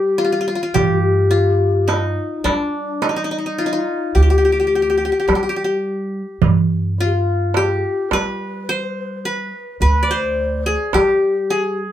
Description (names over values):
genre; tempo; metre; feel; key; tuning
Arabic maqam ensemble; 106 BPM (eighths); 10/8; straight; G maqam hijaz; A4 = 438 Hz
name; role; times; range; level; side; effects
qanun; melody; 0.0-11.9 s; D4 to D5; -20 LUFS; left 1 dB; none
breathy mellow low ney; second line; 0.0-11.8 s; D4 to C5; -21 LUFS; left 3 dB; none
upright bass; bass; 0.0-11.9 s; D2 to G3; -21 LUFS; right 1 dB; none
darbuka; percussion; 0.8-11.2 s; none; -19 LUFS; right 6 dB; none
room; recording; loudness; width
wet small room ambience, RT60 0.5 s; band playing live in one room; -16 LUFS; side -11 dB against mid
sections
0.0-11.9 A section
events
none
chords
none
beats
0.19 | 0.75 1.32 1.88 2.45 3.02 3.58 4.15 4.71 5.28 5.84 | 6.41 6.98 7.54 8.11 8.67 9.24 9.81 10.37 10.94 11.50